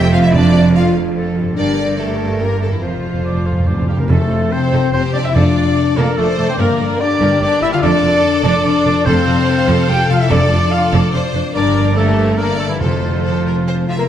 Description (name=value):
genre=cinematic, heroic adventure film score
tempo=145 BPM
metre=3/4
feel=straight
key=F major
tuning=A4 = 441 Hz
part: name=rich symphonic violin section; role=melody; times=0.0-14.1 s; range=E4 to G5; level=-26 LUFS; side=left 2 dB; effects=none
part: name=rich symphonic violin section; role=second line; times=0.0-14.1 s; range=E4 to G5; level=-26 LUFS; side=left 1 dB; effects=none
part: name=warm clarinet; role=second line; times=0.0-14.1 s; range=E4 to G5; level=-24 LUFS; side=left 1 dB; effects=none
part: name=clear symphonic viola section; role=accompaniment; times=0.0-13.9 s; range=Bb3 to F5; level=-26 LUFS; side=right 2 dB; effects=none
part: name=concert harp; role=arpeggios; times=0.0-14.1 s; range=F2 to C6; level=-22 LUFS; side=left 5 dB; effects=none
part: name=clear symphonic cello section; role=bass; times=0.0-14.0 s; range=F2 to Bb3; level=-20 LUFS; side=right 3 dB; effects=none
part: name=dark symphonic double bass section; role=bass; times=0.0-13.9 s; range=F1 to G1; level=-20 LUFS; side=right 3 dB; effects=none
part: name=mellow large flute ensemble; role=second line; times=0.1-3.9, 13.9-14.1 s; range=E4 to Bb5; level=-31 LUFS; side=right 2 dB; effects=none
part: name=mellow French horn section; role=sustained chords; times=0.1-14.0 s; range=E3 to Bb4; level=-18 LUFS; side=left 3 dB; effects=none
part: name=timpani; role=percussion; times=0.3-5.9, 9.1-13.4 s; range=F2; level=-20 LUFS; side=right 1 dB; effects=none
part: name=mellow oboe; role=second line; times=3.3-13.8 s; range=E4 to G5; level=-24 LUFS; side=right 2 dB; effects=none
room=wet scoring stage reverb, RT60 1.5 s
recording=none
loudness=-12 LUFS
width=side -10 dB against mid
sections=0.0-4.1 A section; 4.1-14.1 B section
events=timpani fill 2.8-4.1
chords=0.3 Dm/F; 1.6 Gmadd9; 2.8 F; 5.3 Dm/F; 6.6 Gmadd9; 7.8 Dm/F; 9.1 F; 10.3 Dm/F; 11.5 Gmadd9; 12.8 F